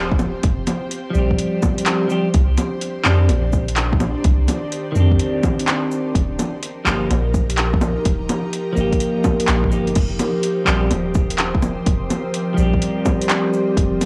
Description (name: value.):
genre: future garage.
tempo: 126 BPM.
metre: 4/4.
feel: swing 66% on 16ths.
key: unclear.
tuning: A4 = 440 Hz.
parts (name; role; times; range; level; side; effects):
ethereal airy pad; sustained chords; 0.0-14.1 s; Eb3 to C5; -28 LUFS; equal; ensemble chorus, built-in reverb, phaser, sidechain pumping.
soft 808-style bass; bass; 0.0-14.0 s; Eb1 to F2; -22 LUFS; equal; tube saturation, sidechain pumping.
electronic kick drum; drums; 0.1-13.9 s; none; -22 LUFS; equal; overdrive.
deep house drum kit; drums; 0.2-14.1 s; bongos, cabasa, crash cymbal, handclaps, hi-hat; -24 LUFS; equal; overdrive.
clean electric guitar; accompaniment; 1.1-14.1 s; Eb3 to G4; -25 LUFS; equal; sidechain pumping, tape echo.
drifting glass-harmonics texture; texture; 10.5-14.1 s; Eb3 to Eb5; -36 LUFS; equal; chorus, built-in reverb.
room: light reverb.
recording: dry, gritty hardware recording, cassette tape, small room ambience.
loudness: -19 LUFS.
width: mono.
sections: 0.0-14.1 A section.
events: none.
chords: 0.0 Fsus2; 2.3 Cmadd9; 6.2 Ebadd9; 10.0 Fsus2.